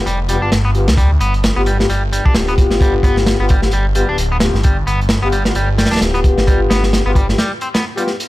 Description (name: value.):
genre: breakbeat, breaks.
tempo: 131 BPM.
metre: 4/4.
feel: swing 56% on 16ths.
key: unclear.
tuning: A4 = 440 Hz.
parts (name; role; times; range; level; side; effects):
mellow brass ensemble; stabs; 0.0-8.1 s; B3 to G4; -20 LUFS; left 3 dB; vintage 12-bit sampler grit, low-pass filter, digital delay.
phased detuned saw bass; bass; 0.0-7.3 s; D1 to D2; -16 LUFS; equal; phaser.
clean electric guitar; riff; 0.1-8.0 s; G3 to D4; -21 LUFS; equal; digital delay.
crunchy breakbeat drum kit; drums; 0.1-8.3 s; hi-hat, kick drum, snare drum; -16 LUFS; equal; none.
room: studio reverb.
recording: none.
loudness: -12 LUFS.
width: side -17 dB against mid.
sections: 0.0-8.3 A section.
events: break 7.4-8.3.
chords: 0.0 G7.